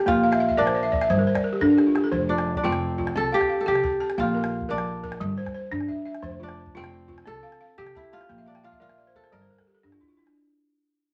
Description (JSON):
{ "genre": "west african traditional, West African string and xylophone music", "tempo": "117 BPM (dotted quarters)", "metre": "12/8", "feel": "straight", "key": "unclear", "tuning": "A4 = 440 Hz", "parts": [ { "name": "kora", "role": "melody", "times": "0.0-10.6 s", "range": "C4 to Bb4", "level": "-28 LUFS", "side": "equal", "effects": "none" }, { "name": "balafon", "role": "arpeggios", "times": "0.0-10.4 s", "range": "F3 to A5", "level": "-26 LUFS", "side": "equal", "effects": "none" }, { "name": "upright bass", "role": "bass", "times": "0.1-10.0 s", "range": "F1 to C3", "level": "-36 LUFS", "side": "equal", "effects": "none" }, { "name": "calabash", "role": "percussion", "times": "0.1-10.3 s", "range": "none", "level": "-38 LUFS", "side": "equal", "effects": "none" } ], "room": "wet studio reverb, RT60 0.6 s", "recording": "none", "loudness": "-24 LUFS", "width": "mono", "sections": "0.0-10.4 A section", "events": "fade-out 0.0-10.4; balafon fill 0.2-2.1, 8.4-10.4; drum fill 1.6-2.1", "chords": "0.1 Bb; 1.1 G5; 2.1 F5; 3.1 C5; 4.2 Bb; 5.2 Gm; 6.2 F5; 7.3 C5; 8.3 Bb5; 9.3 Gm" }